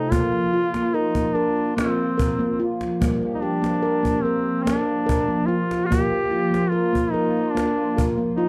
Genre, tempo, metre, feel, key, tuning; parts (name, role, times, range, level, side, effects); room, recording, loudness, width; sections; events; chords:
world meditative, meditative tuned percussion; 145 BPM (eighths); 7/8; straight; A4 = 440 Hz
warm duduk; melody; 0.0-8.5 s; C4 to G4; -26 LUFS; equal
hollow soft pad; sustained chords; 0.0-8.5 s; F3 to G4; -30 LUFS; equal; ensemble chorus
handpan; arpeggios; 0.0-8.5 s; G3 to Bb4; -26 LUFS; equal
cajon; percussion; 0.1-8.3 s; -30 LUFS; equal
moderate booth ambience, RT60 0.2 s; dark, warm production; -22 LUFS; mono
0.1-8.5 A section
0.1 Bb5; 3.0 Gm; 5.9 Bb5